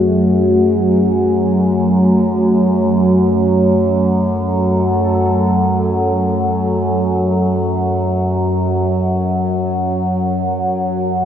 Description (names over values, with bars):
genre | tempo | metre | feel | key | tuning
dark ambient drone | free time | none | none | F# minor | A4 = 440 Hz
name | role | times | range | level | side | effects
sweeping resonant pad | sustained chords | 0.0-11.2 s | F#3 to A4 | -17 LUFS | equal | chorus
overtone-sweeping drone | drone | 0.0-11.2 s | F#2 to F#3 | -15 LUFS | equal | chorus, built-in reverb
room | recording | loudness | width
wet cathedral reverb, RT60 5.2 s | dark, warm production | -13 LUFS | side -9 dB against mid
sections
0.0-11.2 A section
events
fade-out on analog synth pad 0.0-11.2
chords
0.0 F#madd9